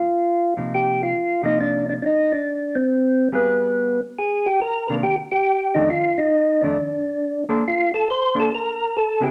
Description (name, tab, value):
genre	jazz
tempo	139 BPM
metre	4/4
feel	swing 65% on 8ths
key	unclear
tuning	A4 = 435 Hz
part	percussive tonewheel organ	melody	0.0-9.3 s	B3 to C5	-21 LUFS	equal	slow rotary speaker
part	hollow-body jazz guitar	accompaniment	0.6-9.3 s	F2 to C5	-28 LUFS	equal	none
room	wet studio reverb, RT60 0.9 s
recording	none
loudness	-21 LUFS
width	mono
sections	0.0-4.2 A section; 4.2-9.3 B section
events	none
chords	0.0 Cmadd11; 2.4 N.C.; 3.3 G7b9; 4.2 F6; 7.6 Bbmaj9